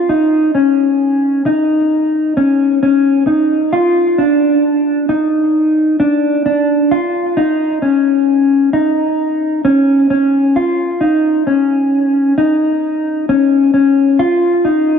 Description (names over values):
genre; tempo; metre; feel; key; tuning
dream pop; 66 BPM; 4/4; straight; unclear; A4 = 438 Hz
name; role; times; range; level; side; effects
mellow electric guitar; solo; 0.0-15.0 s; Db4 to F4; -11 LUFS; left 1 dB; wide subtle chorus, ping-pong delay
room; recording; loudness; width
wet plate reverb, RT60 3.5 s; dark, warm production; -11 LUFS; side -6 dB against mid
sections
0.0-15.0 A section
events
none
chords
none